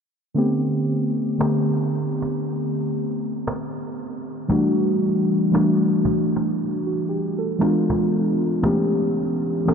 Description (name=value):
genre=contemporary R&B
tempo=58 BPM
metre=4/4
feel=swing 58% on 16ths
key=unclear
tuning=A4 = 444 Hz
part: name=muted felt-like synth keys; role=accompaniment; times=0.3-9.7 s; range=D3 to A4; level=-20 LUFS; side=equal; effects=chorus
part: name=cajon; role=drums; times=1.4-9.7 s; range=none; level=-33 LUFS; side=right 1 dB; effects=none
room=wet huge ambient reverb, RT60 7.1 s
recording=dreamy mix soaked in reverb, low-pass filter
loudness=-19 LUFS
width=side -6 dB against mid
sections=0.4-9.7 A section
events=filter sweep 0.4-9.7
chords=0.4 Am11; 4.5 Em11; 7.6 E7b9; 8.6 A9